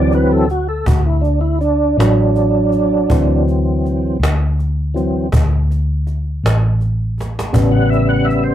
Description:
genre	slow blues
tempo	54 BPM (dotted quarters)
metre	12/8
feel	straight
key	D mixolydian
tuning	A4 = 440 Hz
part	tonewheel organ	sustained chords	0.0-8.5 s	C#3 to F#5	-15 LUFS	right 1 dB	slow rotary speaker, chorus vibrato
part	vintage muted fingered electric bass	bass	0.0-8.5 s	A1 to D2	-16 LUFS	equal	none
part	cajon	drums	0.1-8.4 s	none	-21 LUFS	equal	none
room	light reverb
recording	rough rehearsal-room recording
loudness	-13 LUFS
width	side -11 dB against mid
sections	0.0-8.5 A section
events	tonewheel organ solo 0.0-8.5; drum fill 7.2-7.5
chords	0.0 D9; 7.5 A9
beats	0.86 1.98 | 3.09 4.20 5.32 6.43 | 7.54

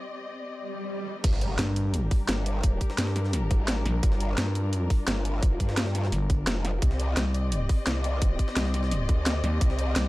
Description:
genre	dark technical drum and bass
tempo	172 BPM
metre	4/4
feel	straight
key	G minor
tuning	A4 = 440 Hz
part	dark studio string section	sustained chords	0.0-10.1 s	G3 to Eb5	-34 LUFS	left 2 dB	sidechain pumping
part	swell and impact	sound effects	0.6-2.6 s	none	-36 LUFS	equal	none
part	growl bass	bass	1.2-9.9 s	F1 to G2	-28 LUFS	equal	chorus, tube saturation, sidechain pumping
part	drum and bass drum kit	drums	1.2-10.0 s	crash cymbal, hi-hat, snare drum	-30 LUFS	equal	none
part	electronic kick drum	drums	1.2-9.7 s	none	-24 LUFS	equal	none
part	jungle sampler-style drum kit	drums	1.2-10.0 s	hi-hat, snare drum	-39 LUFS	equal	overdrive, high-pass filter on hats, high-pass filter on snare
part	growling FM bass	bass	1.6-10.1 s	G1 to G2	-26 LUFS	equal	none
room	little or no reverb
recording	none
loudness	-24 LUFS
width	side -19 dB against mid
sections	0.0-1.2 A section; 1.2-10.1 B section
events	break 0.0-1.2; swell 0.6-1.2; drop 1.2-10.1; impact 1.2-2.6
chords	0.0 Cm; 1.2 Gm; 6.8 Cm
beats	0.19 0.54 0.89 | 1.24 1.59 1.94 2.29 | 2.63 2.98 3.33 3.68 | 4.03 4.38 4.73 5.08 | 5.43 5.77 6.12 6.47 | 6.82 7.17 7.52 7.87 | 8.22 8.56 8.91 9.26 | 9.61 9.96

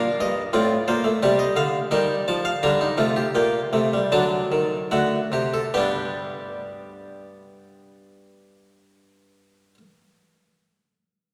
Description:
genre	classical, baroque-style 4-part fugue for harpsichord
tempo	71-90 BPM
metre	4/4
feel	straight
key	unclear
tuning	A4 = 439 Hz
part	harpsichord	solo	0.0-9.8 s	G2 to Bb5	-23 LUFS	equal	none
room	wet church reverb, RT60 3.0 s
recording	recorded in a church or concert hall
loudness	-22 LUFS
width	mono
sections	0.0-5.7 A section; 5.7-9.1 B section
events	slowing down 0.0-5.7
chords	0.0 Gm; 1.2 Cm; 2.6 Gm; 4.1 D7; 5.7 G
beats	0.53 1.22 1.91 | 2.63 3.37 4.13 4.92 | 5.75 6.58 7.42 8.26

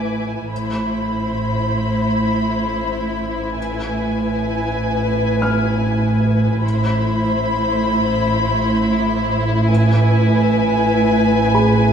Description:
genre	cinematic, suspense film score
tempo	free time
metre	none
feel	none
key	A harmonic minor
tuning	A4 = 440 Hz
part	muted studio violin section	melody	0.0-11.9 s	G#5 to B5	-23 LUFS	equal	none
part	muted studio violin section	second line	0.0-11.9 s	E4 to C5	-22 LUFS	left 3 dB	none
part	muted studio cello section	bass	0.0-11.9 s	A2	-20 LUFS	right 2 dB	none
part	muted studio double bass section	bass	0.0-11.9 s	A1	-22 LUFS	right 2 dB	none
part	felt-muted upright piano	texture	5.4-11.9 s	G#4 to F6	-26 LUFS	left 2 dB	none
room	moderate scoring stage reverb, RT60 1.6 s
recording	minimal, uncompressed stereo recording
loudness	-16 LUFS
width	side -8 dB against mid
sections	0.0-11.9 A section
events	none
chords	0.0 E/A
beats	free time

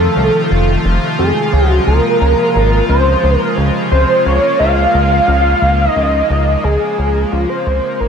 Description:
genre	synthwave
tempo	88 BPM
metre	4/4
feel	straight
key	unclear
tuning	A4 = 440 Hz
part	wide unison lead	melody	0.0-8.1 s	F4 to F5	-14 LUFS	equal	slapback echo, tape echo
part	chorused pulse-width pad	sustained chords	0.0-8.1 s	C3 to F4	-18 LUFS	left 1 dB	none
part	chorused synth bass	bass	0.0-8.1 s	F1 to F2	-14 LUFS	equal	none
room	moderate concert hall reverb, RT60 2.0 s, digital ambience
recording	big arena sound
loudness	-11 LUFS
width	side -7 dB against mid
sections	0.0-8.1 A section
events	fade-out 5.2-8.1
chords	0.0 F7; 1.5 Dbmaj7; 7.0 Bbm7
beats	0.17 0.85 | 1.53 2.21 2.89 3.57 | 4.26 4.94 5.62 6.30 | 6.98 7.67

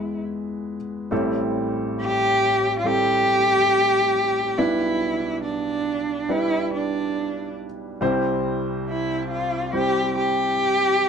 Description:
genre	acoustic folk-pop ballad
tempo	70 BPM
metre	4/4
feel	straight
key	A minor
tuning	A4 = 440 Hz
part	warm cello	melody	0.0-11.1 s	D4 to G4	-20 LUFS	equal	none
part	warm upright piano	accompaniment	0.0-11.1 s	A1 to C5	-25 LUFS	equal	none
room	moderate studio ambience, RT60 0.5 s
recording	dark, warm production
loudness	-20 LUFS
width	side -6 dB against mid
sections	0.0-1.1 A section; 1.1-11.1 B section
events	none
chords	0.0 E; 1.1 Am7; 4.6 Em7/B; 8.0 C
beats	0.25 | 1.11 1.98 2.85 3.71 | 4.57 5.44 6.30 7.16 | 8.01 8.87 9.73 10.59

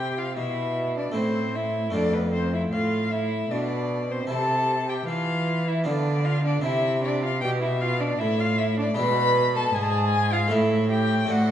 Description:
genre	classical, baroque-style sonata movement with continuo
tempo	77 BPM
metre	3/4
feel	straight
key	C major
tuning	A4 = 440 Hz
part	rich violin	melody	0.0-11.5 s	B4 to B5	-27 LUFS	left 4 dB	none
part	rich violin	second line	0.0-11.5 s	B3 to B4	-30 LUFS	right 5 dB	none
part	harpsichord	accompaniment	0.0-11.5 s	F2 to F4	-29 LUFS	equal	none
part	rich cello	bass	0.0-11.5 s	F2 to E3	-26 LUFS	right 1 dB	none
room	wet recital hall reverb, RT60 1.4 s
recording	nothing above 10.7 kHz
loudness	-22 LUFS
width	side -10 dB against mid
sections	0.0-11.5 A section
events	none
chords	0.0 C; 1.2 Am; 1.9 F; 4.3 C; 5.9 Dm6; 6.6 C; 9.0 E7/B; 10.5 Am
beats	0.37 1.15 | 1.94 2.72 3.51 | 4.29 5.08 5.86 | 6.64 7.42 8.20 | 8.98 9.75 10.52 | 11.30

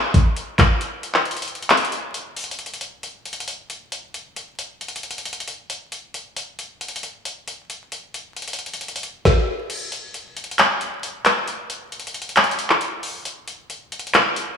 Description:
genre	hip hop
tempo	135 BPM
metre	4/4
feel	half-time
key	none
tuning	none
part	trap drum kit	drums	0.1-14.5 s	crash cymbal, handclaps, hi-hat, kick drum, snare drum	-20 LUFS	left 1 dB	none
room	wet lush hall reverb, RT60 1.7 s, digital ambience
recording	vinyl crackle, small room ambience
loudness	-21 LUFS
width	side -7 dB against mid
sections	0.0-2.6 A section; 2.6-9.7 B section; 9.7-14.6 C section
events	break 0.8-2.6; kick muted 9.7-14.6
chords	none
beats	0.36 | 0.81 1.25 1.70 2.14 | 2.59 3.03 3.48 3.92 | 4.37 4.81 5.25 5.70 | 6.14 6.59 7.03 7.48 | 7.92 8.37 8.81 9.25 | 9.70 10.14 10.59 11.03 | 11.48 11.92 12.37 12.81 | 13.25 13.70 14.14

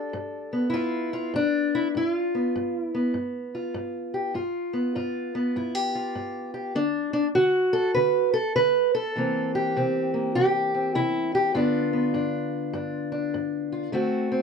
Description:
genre	acoustic country blues, solo or duo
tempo	100 BPM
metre	4/4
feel	swing 64% on 8ths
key	G mixolydian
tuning	A4 = 440 Hz
part	fingerpicked steel-string acoustic guitar	solo	0.0-14.4 s	G2 to B4	-23 LUFS	equal	none
room	light reverb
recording	dry, close 1970s-style studio recording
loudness	-23 LUFS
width	side -6 dB against mid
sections	0.0-14.4 A section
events	none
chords	0.0 G7; 6.7 N.C.; 9.1 C7; 11.5 G7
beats	0.13 0.73 1.33 | 1.94 2.54 3.14 3.74 | 4.34 4.95 5.55 6.15 | 6.75 7.35 7.95 8.55 | 9.15 9.75 10.35 10.95 | 11.54 12.14 12.74 13.34 | 13.93

